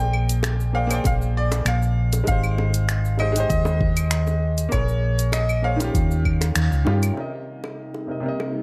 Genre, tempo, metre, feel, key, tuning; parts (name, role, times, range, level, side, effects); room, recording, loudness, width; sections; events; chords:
sunset chillout; 98 BPM; 4/4; straight; F minor; A4 = 445 Hz
bright concert grand piano; melody; 0.0-6.8 s; Db5 to G5; -31 LUFS; equal; tape echo
clear concert grand piano; accompaniment; 0.0-8.6 s; C3 to G5; -32 LUFS; equal; tape echo
hollow-body short-scale fingered electric bass; bass; 0.0-7.1 s; Ab1 to G2; -23 LUFS; equal
deep house drum kit; drums; 0.1-8.5 s; cabasa, claves, finger snaps, hi-hat; -31 LUFS; equal; low-pass filter on hats, low-pass filter on perc, low-pass filter on snare, low-pass filter on room
bongos; percussion; 0.4-8.5 s; -36 LUFS; equal
electronic kick drum; drums; 1.1-6.4 s; -26 LUFS; equal
shimmering ambient pad; sustained chords; 7.6-8.6 s; C3 to Eb4; -34 LUFS; equal; chorus, built-in reverb
light reverb; -22 LUFS; mono
0.0-7.2 A section; 7.2-8.6 B section
filter sweep on grand piano 0.0-7.2; band accent 6.6-6.9
0.0 Bb13; 2.3 Fm9/Ab; 4.7 Bbm9; 5.9 Eb9; 7.2 Cm7